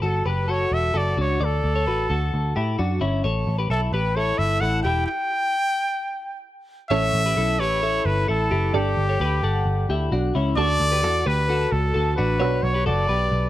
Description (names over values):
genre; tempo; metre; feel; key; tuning
indie pop; 131 BPM; 4/4; straight; A mixolydian; A4 = 439 Hz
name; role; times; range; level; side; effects
clear trumpet; melody; 0.0-13.5 s; G4 to G5; -24 LUFS; equal; plate reverb
twelve-string electric guitar; arpeggios; 0.0-13.5 s; C#4 to C#6; -26 LUFS; left 3 dB; plate reverb
vintage muted picked electric bass; bass; 0.0-13.5 s; E1 to A2; -23 LUFS; right 1 dB; none
warm upright piano; accompaniment; 6.9-13.5 s; C#4 to B4; -32 LUFS; right 9 dB; plate reverb
room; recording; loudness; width
light reverb; none; -20 LUFS; side -14 dB against mid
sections
0.0-6.9 A section; 6.9-13.5 B section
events
stop 5.1-6.9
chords
0.0 G; 1.4 Dadd9; 3.2 A; 4.9 Em; 6.9 A; 8.7 Gsus2; 10.6 D; 12.4 Bm